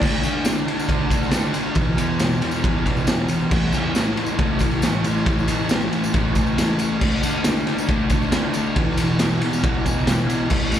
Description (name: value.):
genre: garage rock duo or trio.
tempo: 137 BPM.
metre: 4/4.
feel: straight.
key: unclear.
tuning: A4 = 441 Hz.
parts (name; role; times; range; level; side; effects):
fuzz guitar; riff; 0.0-10.8 s; E2 to D4; -21 LUFS; equal; distortion, slapback echo.
raw garage drum kit; drums; 0.0-10.8 s; crash cymbal, kick drum, ride cymbal, snare drum; -21 LUFS; equal; none.
tambourine; percussion; 0.2-10.8 s; none; -35 LUFS; left 3 dB; none.
room: light reverb.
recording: live gig heard through the venue's PA, recital hall reverb.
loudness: -18 LUFS.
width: side -10 dB against mid.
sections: 0.0-10.8 A section.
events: none.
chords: 0.0 D5; 1.8 E5; 3.5 A5; 7.0 D5; 8.8 E5.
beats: | 0.01 0.45 0.89 1.32 | 1.76 2.20 2.63 3.07 | 3.51 3.94 4.38 4.82 | 5.26 5.69 6.13 6.57 | 7.01 7.44 7.88 8.32 | 8.76 9.19 9.63 10.07 | 10.50.